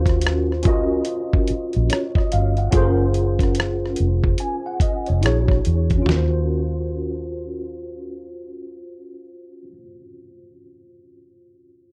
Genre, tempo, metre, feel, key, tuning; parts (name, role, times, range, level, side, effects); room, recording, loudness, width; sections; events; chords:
R&B, neo-soul; 72 BPM; 4/4; swing 63% on 16ths; Eb dorian; A4 = 440 Hz
mellow tine electric piano; accompaniment; 0.0-11.9 s; Db4 to Ab5; -26 LUFS; equal; ensemble chorus
vintage muted fingered electric bass; bass; 0.0-9.7 s; F1 to Fb2; -23 LUFS; equal
dusty soul sampler-style drum kit; drums; 0.1-6.3 s; hi-hat, kick drum, rim click, snare drum, toms; -22 LUFS; equal
little or no reverb; dry, close 1970s-style studio recording; -20 LUFS; mono
0.0-6.1 A section; 6.1-9.4 B section
0.0 Ebm9; 2.7 Gbmaj7; 5.2 Bb7alt; 6.1 Ebm9